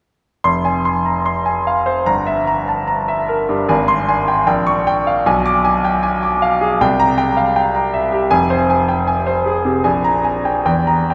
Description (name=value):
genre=classical, romantic character piece for solo piano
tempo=66-80 BPM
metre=2/4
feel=rubato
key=F minor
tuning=A4 = 441 Hz
part: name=bright concert grand piano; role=solo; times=0.4-11.1 s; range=F1 to D6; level=-16 LUFS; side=equal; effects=none
room=wet cathedral reverb, RT60 5.3 s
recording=in a vast, echoing space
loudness=-16 LUFS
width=mono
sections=0.4-11.1 A section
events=none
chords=0.4 Fm; 2.1 Edim/G; 3.7 Abmaj7; 4.5 Gdim/Bb; 5.3 Bdim7; 6.8 C7; 8.3 Fm; 9.8 Absus2/Bb